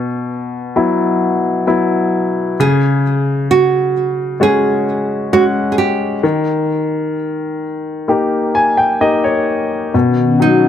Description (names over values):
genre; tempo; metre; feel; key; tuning
pop; 65 BPM; 4/4; straight; unclear; A4 = 440 Hz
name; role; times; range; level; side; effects
nylon-string guitar; melody; 0.0-10.7 s; B3 to G#4; -16 LUFS; right 4 dB; none
clear baby grand piano; accompaniment; 0.0-10.7 s; B2 to G#5; -14 LUFS; left 2 dB; none
sweeping resonant pad; sustained chords; 9.9-10.7 s; D#3 to F#4; -15 LUFS; left 2 dB; lush chorus
room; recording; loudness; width
light reverb, studio reverb; none; -13 LUFS; side -9 dB against mid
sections
0.0-9.9 A section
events
grand piano fill 8.1-9.9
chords
0.0 Esus2/B; 2.6 C#sus4; 6.2 D#; 9.9 Badd9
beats
0.75 1.67 | 2.58 3.49 4.40 5.32 | 6.24 7.16 8.08 9.01 | 9.95